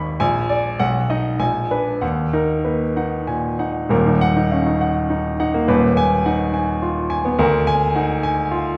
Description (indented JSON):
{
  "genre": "classical, virtuoso piano study",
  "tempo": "93-108 BPM",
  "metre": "3/4",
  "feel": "rubato",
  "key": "Eb minor",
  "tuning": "A4 = 440 Hz",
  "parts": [
    { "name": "clear baby grand piano", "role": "solo", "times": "0.0-8.8 s", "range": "Eb1 to Db6", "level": "-19 LUFS", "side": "equal", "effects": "none" }
  ],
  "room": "wet recital hall reverb, RT60 1.4 s",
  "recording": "heard from further back in the room",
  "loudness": "-19 LUFS",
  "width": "mono",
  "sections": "0.0-3.9 A section; 3.9-8.8 B section",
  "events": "none",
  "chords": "0.2 Bb7; 0.8 B; 1.4 Bb7b9; 2.0 Ebm; 5.7 Fm7b5/Eb; 7.4 Bb7/D",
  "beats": "| 0.20 0.80 1.39 | 2.02 2.65 3.28 | 3.91 4.51 5.10 | 5.68 6.26 6.82 | 7.40 7.96 8.51"
}